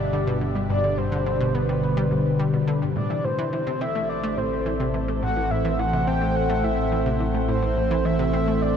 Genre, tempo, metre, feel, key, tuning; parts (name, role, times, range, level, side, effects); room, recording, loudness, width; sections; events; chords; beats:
ambient, sequencer-driven space music; 106 BPM; 4/4; straight; A minor; A4 = 440 Hz
breathy flute-like synth lead; melody; 0.0-8.8 s; B4 to G5; -27 LUFS; equal; analog chorus, ping-pong delay
evolving wavetable pad; sustained chords; 0.0-8.8 s; B2 to C5; -25 LUFS; equal; chorus, built-in reverb, phaser
analog drone; bass; 0.0-8.8 s; G1 to A1; -29 LUFS; equal; chorus
analog pluck; riff; 0.1-8.5 s; G2 to C4; -28 LUFS; equal; chorus, cassette tape, ping-pong delay
wet huge ambient reverb, RT60 8.1 s; cassette tape; -21 LUFS; side -8 dB against mid
0.0-3.0 A section; 3.0-8.8 A section
0.0 G; 3.0 Am
0.13 | 0.69 1.26 1.83 2.39 | 2.96 3.52 4.09 4.66 | 5.22 5.79 6.36 6.92 | 7.49 8.05 8.62